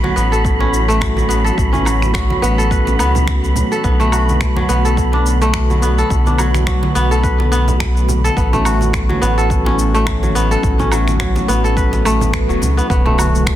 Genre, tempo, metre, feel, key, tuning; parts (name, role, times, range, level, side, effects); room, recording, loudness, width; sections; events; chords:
organic downtempo; 106 BPM; 4/4; swing 56% on 16ths; A4 = 438 Hz
warm analog pad; sustained chords; 0.0-13.6 s; D3 to F#4; -22 LUFS; equal; chorus, sidechain pumping
kora; arpeggios; 0.0-13.6 s; F#3 to B4; -18 LUFS; left 1 dB; ping-pong delay
round analog bass; bass; 0.0-13.6 s; E1 to C#2; -17 LUFS; equal; sidechain pumping
congas; percussion; 0.0-13.3 s; -26 LUFS; right 2 dB
wind-like tuned noise texture; texture; 0.0-12.9 s; B5; -27 LUFS; right 3 dB; built-in reverb
electronic shaker, finger snaps and woodblock; drums; 0.2-13.6 s; -25 LUFS; equal; soft clipping on snare
electronic kick drum; drums; 0.4-13.6 s; -20 LUFS; equal
swell and impact; sound effects; 12.0-13.6 s; -25 LUFS; left 1 dB
light reverb; dense, heavily limited modern master; -12 LUFS; side -12 dB against mid
0.0-12.9 A section
swell 12.0-12.9; impact 12.9-13.6
0.0 A6; 3.8 Bm7; 8.4 A6; 12.9 Bm7